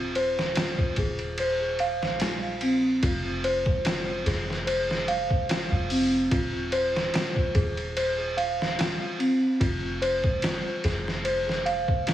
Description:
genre	trip hop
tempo	73 BPM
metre	4/4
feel	swing 54% on 16ths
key	F minor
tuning	A4 = 440 Hz
part	worn celesta	arpeggios	0.0-12.1 s	C4 to F5	-26 LUFS	equal	tape echo
part	soft 808-style bass	bass	0.0-12.1 s	Eb1 to Bb1	-34 LUFS	equal	tube saturation
part	trip hop sampler-style drum kit	drums	0.2-12.1 s	hi-hat, kick drum, ride cymbal, snare drum	-28 LUFS	equal	none
room	moderate echo chamber reverb, RT60 1.9 s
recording	heavily compressed radio sound, vinyl crackle, small room reverb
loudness	-24 LUFS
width	side -12 dB against mid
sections	0.0-12.1 A section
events	none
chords	0.0 Ebsus4; 3.0 Fm; 6.3 Fm7

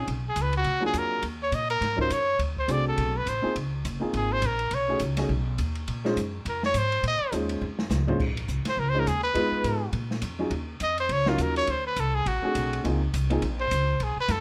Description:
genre	jazz, small-group swing and bop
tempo	207 BPM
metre	4/4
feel	swing 60% on 8ths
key	Bb minor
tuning	A4 = 442 Hz
part	bright trumpet	melody	0.0-14.4 s	F4 to Eb5	-29 LUFS	equal	none
part	warm baby grand piano	accompaniment	0.0-13.4 s	Bb2 to C5	-32 LUFS	equal	none
part	upright bass	bass	0.0-14.4 s	Gb1 to Bb2	-32 LUFS	equal	none
part	open jazz drum kit	drums	0.1-14.4 s	crash cymbal, hi-hat, kick drum, ride cymbal, snare drum, toms	-38 LUFS	equal	none
room	moderate club reverb, RT60 0.6 s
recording	none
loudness	-27 LUFS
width	mono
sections	0.0-8.2 A section; 8.2-14.4 A section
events	trumpet solo 0.0-14.4; drum fill 7.6-8.2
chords	0.1 Bsus2; 0.7 Bb7b13; 1.2 Ebm7; 2.4 D7#11; 3.6 Dbmaj13; 4.7 B13; 5.9 Bbm11; 7.6 F5; 8.2 Bbmadd9; 9.4 Fm7b5; 9.9 Bb5; 10.5 Ebm9; 11.7 D7#11; 12.8 Dbmaj13

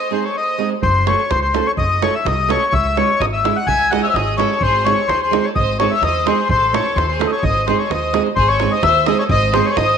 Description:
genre	balkan folk, Balkan wedding band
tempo	127 BPM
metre	2/4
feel	straight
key	G# phrygian dominant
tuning	A4 = 440 Hz
part	accordion	melody	0.0-10.0 s	B#4 to G#5	-16 LUFS	left 4 dB	slapback echo
part	bright violin	second line	0.0-0.7, 3.7-10.0 s	G#4 to E5	-25 LUFS	right 7 dB	none
part	flamenco guitar	accompaniment	0.1-9.7 s	G#3 to A4	-22 LUFS	right 10 dB	none
part	upright bass	bass	0.8-10.0 s	F#1 to E2	-21 LUFS	left 1 dB	none
part	davul	percussion	0.8-10.0 s	none	-24 LUFS	right 6 dB	none
room	moderate echo chamber reverb, RT60 1.7 s, studio reverb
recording	1960s-style stereo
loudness	-14 LUFS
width	side -7 dB against mid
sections	0.8-8.4 A section; 8.4-10.0 B section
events	break 0.0-0.8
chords	0.0 G#; 0.8 F#m; 2.7 C#m; 4.6 G#; 6.5 A; 7.4 G#

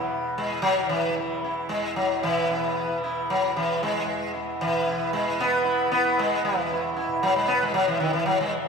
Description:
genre	indian classical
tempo	114 BPM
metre	4/4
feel	straight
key	E raga hamsadhwani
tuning	A4 = 439 Hz
part	sitar	melody	0.0-8.5 s	D#3 to E4	-23 LUFS	equal	none
part	tanpura	drone	0.0-8.7 s	E2 to E3	-33 LUFS	equal	none
room	wet church reverb, RT60 3.0 s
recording	recorded in a church or concert hall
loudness	-22 LUFS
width	side -5 dB against mid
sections	0.0-2.2 A section; 2.2-8.7 B section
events	none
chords	none

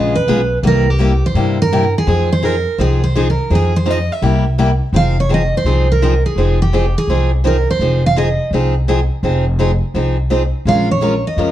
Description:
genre	acoustic string swing (jazz manouche)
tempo	168 BPM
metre	4/4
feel	swing 63% on 8ths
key	F minor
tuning	A4 = 437 Hz
part	picked steel-string acoustic guitar	melody	0.0-8.5, 10.7-11.5 s	G4 to F5	-17 LUFS	right 2 dB	plate reverb
part	picked steel-string acoustic guitar	accompaniment	0.0-11.5 s	C3 to Bb4	-18 LUFS	left 2 dB	none
part	upright bass	bass	0.0-11.5 s	F1 to G2	-16 LUFS	equal	none
room	light reverb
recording	dark, warm production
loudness	-12 LUFS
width	side -12 dB against mid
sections	0.0-4.9 A section; 4.9-11.5 A section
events	none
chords	0.0 Db7; 0.6 C7; 2.1 Fm7; 4.2 C7; 4.9 Fm7; 10.7 Bbm7

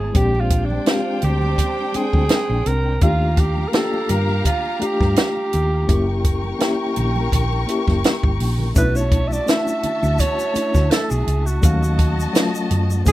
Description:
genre	lush 1970s-style soul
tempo	84 BPM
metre	4/4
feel	swing 54% on 16ths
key	unclear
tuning	A4 = 441 Hz
part	breathy alto saxophone	melody	0.0-13.1 s	D4 to E5	-23 LUFS	right 3 dB	none
part	warm studio string section	second line	0.0-13.1 s	D4 to C#6	-28 LUFS	left 3 dB	none
part	reed electric piano	accompaniment	0.0-13.1 s	F#3 to G5	-24 LUFS	left 2 dB	fast tremolo
part	hollow-body short-scale fingered electric bass	bass	0.0-13.1 s	F#1 to G2	-20 LUFS	equal	none
part	compact cocktail drum kit	drums	0.1-13.1 s	hi-hat, kick drum, snare drum	-18 LUFS	equal	none
part	congas	percussion	0.1-13.1 s	none	-32 LUFS	right 4 dB	none
part	egg shaker	percussion	8.8-13.1 s	none	-34 LUFS	left 4 dB	none
room	little or no reverb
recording	rough home demo mix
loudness	-16 LUFS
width	side -15 dB against mid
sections	0.0-13.1 A section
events	alto saxophone solo 0.0-13.1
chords	0.2 A#13; 3.0 D#maj9#11; 5.9 F#7b9; 8.8 Bm11; 11.6 D#m7b5

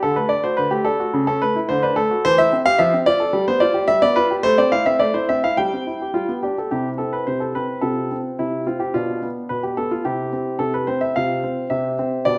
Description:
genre	classical-period piano sonatina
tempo	108 BPM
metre	2/4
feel	straight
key	C major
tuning	A4 = 436 Hz
part	clear baby grand piano	solo	0.0-12.4 s	B2 to G5	-20 LUFS	equal	none
room	wet recital hall reverb, RT60 1.4 s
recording	none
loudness	-20 LUFS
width	mono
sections	0.0-6.7 A section; 6.7-12.4 B section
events	none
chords	0.0 D; 1.1 A/C#; 1.7 D; 2.2 C/E; 2.8 Dm7/F; 3.3 G7; 4.4 Am; 5.6 C/G; 6.1 G; 6.7 C; 7.8 F/C; 8.9 Bm7b5; 10.0 C; 11.1 F5/C; 11.7 C

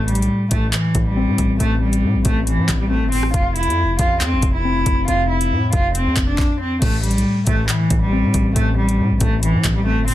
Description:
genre	hip hop, drill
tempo	138 BPM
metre	4/4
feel	half-time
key	A minor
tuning	A4 = 440 Hz
part	warm cello	melody	0.0-10.1 s	E3 to F4	-20 LUFS	equal	none
part	muted felt-like synth keys	accompaniment	0.0-10.1 s	F2 to C4	-22 LUFS	left 2 dB	chorus
part	distorted 808-style bass	bass	0.0-10.1 s	F1 to A2	-21 LUFS	equal	distortion
part	drill drum kit	drums	0.1-10.1 s	crash cymbal, handclaps, hi-hat, kick drum, rim click, snare drum	-21 LUFS	equal	none
room	little or no reverb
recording	dense, heavily limited modern master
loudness	-15 LUFS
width	side -14 dB against mid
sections	0.0-6.8 A section; 6.8-10.1 B section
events	none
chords	0.0 Am; 3.3 F; 6.8 Am

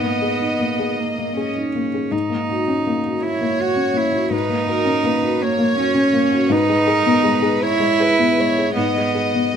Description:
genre	neoclassical piano and strings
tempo	54 BPM (dotted quarters)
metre	6/8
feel	rubato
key	unclear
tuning	A4 = 439 Hz
part	dark chamber violin section	melody	0.0-9.6 s	A#4 to D#5	-22 LUFS	right 1 dB	none
part	rich cello	second line	0.0-9.6 s	A#3 to F#4	-20 LUFS	right 4 dB	none
part	felt-muted upright piano	accompaniment	0.0-9.6 s	G#2 to G#4	-21 LUFS	left 4 dB	none
room	moderate recital hall reverb, RT60 1.5 s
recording	close, detailed microphones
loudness	-16 LUFS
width	side -8 dB against mid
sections	0.0-9.6 A section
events	none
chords	0.0 G#madd9; 2.1 F#/G#; 6.5 E/G#

